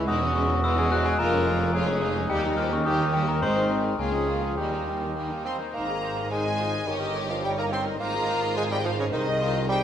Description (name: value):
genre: cinematic, playful, whimsical film cue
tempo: 106 BPM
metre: 2/4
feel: straight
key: Ab major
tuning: A4 = 440 Hz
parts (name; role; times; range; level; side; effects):
- clear studio violin section; melody; 0.0-9.8 s; Bb3 to C6; -34 LUFS; left 4 dB; none
- glockenspiel with rubber mallets; melody; 0.0-5.1 s; G5 to F#6; -30 LUFS; left 3 dB; none
- clear studio violin section; second line; 0.0-9.8 s; G#3 to G4; -36 LUFS; left 2 dB; none
- warm clarinet; second line; 0.0-9.8 s; C#4 to C5; -34 LUFS; left 1 dB; none
- rich studio viola section; accompaniment; 0.0-9.8 s; Eb3 to Eb5; -35 LUFS; right 2 dB; none
- mellow French horn section; sustained chords; 0.0-9.8 s; Db3 to Db5; -33 LUFS; left 4 dB; none
- clear studio double bass section; bass; 0.0-9.8 s; E1 to Eb2; -33 LUFS; right 3 dB; none
- rich studio cello section; bass; 0.0-9.8 s; C2 to Ab2; -32 LUFS; right 2 dB; none
- warm tuba; bass; 0.0-9.8 s; E1 to Eb2; -35 LUFS; right 3 dB; none
- clear bassoon; accompaniment; 0.1-9.8 s; Db3 to G4; -30 LUFS; right 1 dB; none
- bright large flute ensemble; second line; 5.5-9.8 s; Db5 to C6; -35 LUFS; equal; none
room: wet scoring stage reverb, RT60 1.6 s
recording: none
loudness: -23 LUFS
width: side -9 dB against mid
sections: 0.0-5.7 A section; 5.7-9.8 B section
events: none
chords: 0.1 C#m/E; 1.2 Db/F; 2.3 Eb; 3.4 Ab; 4.0 Bbm/Db; 4.6 Eb; 5.7 Ab; 6.9 Eb7/G; 8.0 Ab; 9.1 Ab/C